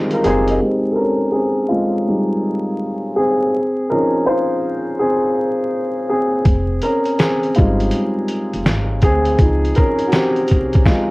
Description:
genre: lo-fi hip hop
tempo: 82 BPM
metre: 4/4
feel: swing 66% on 16ths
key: F minor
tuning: A4 = 437 Hz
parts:
  - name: dark upright piano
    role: accompaniment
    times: 0.0-11.1 s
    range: Eb3 to Eb5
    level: -16 LUFS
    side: equal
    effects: low-pass filter
  - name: lo-fi sampler-style drum kit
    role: drums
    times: 0.1-0.6, 6.5-11.1 s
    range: hi-hat, kick drum, snare drum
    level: -17 LUFS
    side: equal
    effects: vintage 12-bit sampler grit
  - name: upright bass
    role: bass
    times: 0.2-0.6, 6.5-10.8 s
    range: F1 to D2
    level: -20 LUFS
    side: equal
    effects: none
room: light reverb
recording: worn, warbling old tape, cassette tape, vinyl crackle, warbly pitch drift, lossy compression artefacts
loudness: -15 LUFS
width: side -23 dB against mid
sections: 0.6-11.1 A section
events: upright piano solo 0.6-11.1; filter sweep on upright piano 0.6-11.1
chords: 0.0 Fm9; 0.6 Fm7; 3.5 Dbmaj7; 6.5 Fm7; 9.4 Dbmaj7

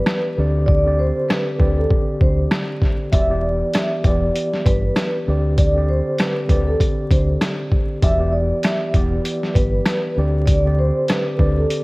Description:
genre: hip hop, boom-bap hip-hop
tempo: 98 BPM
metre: 4/4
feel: swing 57% on 16ths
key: unclear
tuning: A4 = 438 Hz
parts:
  - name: vibraphone with soft mallets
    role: melody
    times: 0.0-11.7 s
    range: A4 to E5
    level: -23 LUFS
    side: equal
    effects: high-pass filter, low-pass filter, ping-pong delay
  - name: mellow tine electric piano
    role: accompaniment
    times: 0.0-11.8 s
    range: D3 to D5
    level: -24 LUFS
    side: equal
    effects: medium stereo tremolo, high-pass filter, low-pass filter
  - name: boom bap sampler-style drum kit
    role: drums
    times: 0.1-11.8 s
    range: hi-hat, kick drum, rim click, snare drum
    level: -19 LUFS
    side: equal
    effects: none
  - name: deep dub fingered electric bass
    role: bass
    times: 0.4-11.6 s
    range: E1 to D2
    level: -19 LUFS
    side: equal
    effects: none
room: light reverb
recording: worn, warbling old tape, cassette tape, vinyl crackle, warbly pitch drift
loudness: -16 LUFS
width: side -24 dB against mid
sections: 0.0-11.8 A section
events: break 0.0-3.1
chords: 0.4 D7sus4; 3.1 Em7; 5.3 D7sus4; 8.0 Em7; 10.2 D7sus4

